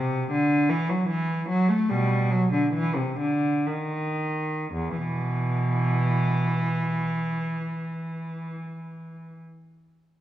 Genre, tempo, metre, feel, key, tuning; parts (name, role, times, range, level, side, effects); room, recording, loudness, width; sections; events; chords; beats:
classical, baroque-style suite movement for unaccompanied cello; 54-82 BPM; 3/4; rubato; E minor; A4 = 440 Hz
rich cello; solo; 0.0-9.4 s; E2 to A3; -24 LUFS; equal
wet recital hall reverb, RT60 1.6 s; recorded in a church or concert hall; -23 LUFS; side -13 dB against mid
0.0-4.7 A section; 4.7-10.2 B section
slowing down 0.0-4.7
0.32 1.09 | 1.89 2.74 3.66 | 4.72 5.77 6.84 | 7.91 8.97